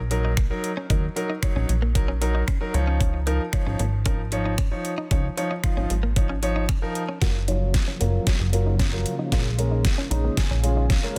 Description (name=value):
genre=dance-pop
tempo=114 BPM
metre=4/4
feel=straight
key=F# major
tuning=A4 = 440 Hz
part: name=plucky analog bass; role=bass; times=0.0-11.2 s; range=F#1 to D#2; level=-26 LUFS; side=equal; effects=sidechain pumping
part: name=warm concert grand piano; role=accompaniment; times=0.1-11.2 s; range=E#3 to A#5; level=-31 LUFS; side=equal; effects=sidechain pumping, low-pass filter
part: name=direct-recorded clean electric guitar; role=riff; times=0.1-11.1 s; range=A#3 to F#4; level=-37 LUFS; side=equal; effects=analog chorus, low-pass filter
part: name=smooth R&B drum kit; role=drums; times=0.1-11.2 s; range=finger snaps, hi-hat, kick drum, snare drum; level=-26 LUFS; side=equal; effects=soft clipping on snare
part: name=string machine, violins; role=sustained chords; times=7.2-11.2 s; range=C#3 to E#4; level=-36 LUFS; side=equal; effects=ensemble chorus, sidechain pumping, low-pass filter
room=little or no reverb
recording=dense, heavily limited modern master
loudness=-24 LUFS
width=mono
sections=0.0-7.2 A section; 7.2-11.2 B section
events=build-up 7.2-11.2; drum fill 7.2-11.2; grand piano fill 9.8-11.2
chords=0.0 D#m; 2.7 C#add9; 7.2 F#maj7; 9.3 A#m7